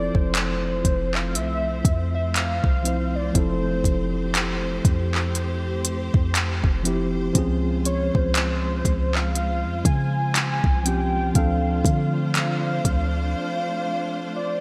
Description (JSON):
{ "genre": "contemporary R&B", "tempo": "60 BPM", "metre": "4/4", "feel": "swing 58% on 16ths", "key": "F major", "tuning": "A4 = 436 Hz", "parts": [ { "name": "warm velvety synth lead", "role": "melody", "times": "0.0-14.6 s", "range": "C5 to Ab5", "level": "-31 LUFS", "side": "equal", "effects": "chorus, digital delay" }, { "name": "mellow tine electric piano", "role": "accompaniment", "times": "0.0-14.6 s", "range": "F3 to C5", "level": "-30 LUFS", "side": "equal", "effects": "none" }, { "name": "warm symphonic string section", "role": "sustained chords", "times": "0.0-14.6 s", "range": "F3 to C5", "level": "-36 LUFS", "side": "equal", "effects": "sidechain pumping" }, { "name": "clean 808-style bass", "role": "bass", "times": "0.0-13.4 s", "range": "F1 to D3", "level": "-28 LUFS", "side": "equal", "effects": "none" }, { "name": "smooth R&B drum kit", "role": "drums", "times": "0.1-13.1 s", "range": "handclaps, hi-hat, kick drum", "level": "-25 LUFS", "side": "equal", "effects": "gated reverb" } ], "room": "light reverb", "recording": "bright 1980s-style digital production", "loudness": "-23 LUFS", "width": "mono", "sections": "0.0-14.6 A section", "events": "break 13.4-14.6", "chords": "0.0 Fmaj7; 7.4 Dbmaj7; 11.4 Dm7" }